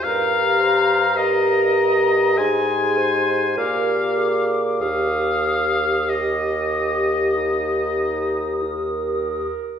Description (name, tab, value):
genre	classical, slow romantic movement for wind quintet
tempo	46-54 BPM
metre	4/4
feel	rubato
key	Eb major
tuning	A4 = 440 Hz
part	concert flute	melody	0.0-9.5 s	Bb5 to Eb6	-27 LUFS	left 4 dB	none
part	bright oboe	second line	0.0-8.6 s	Eb5 to Ab5	-22 LUFS	left 3 dB	none
part	dark French horn	accompaniment	0.0-9.5 s	G4	-25 LUFS	left 3 dB	none
part	warm clarinet	accompaniment	0.0-9.8 s	Eb4 to C5	-27 LUFS	right 6 dB	none
part	mellow bassoon	bass	0.0-9.5 s	Eb2 to Bb2	-23 LUFS	right 2 dB	none
room	wet recital hall reverb, RT60 1.6 s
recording	heard from further back in the room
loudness	-17 LUFS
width	side -8 dB against mid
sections	0.0-9.8 A section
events	none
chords	0.0 Eb/G; 2.4 Abmaj7; 3.6 Bb6; 4.8 Eb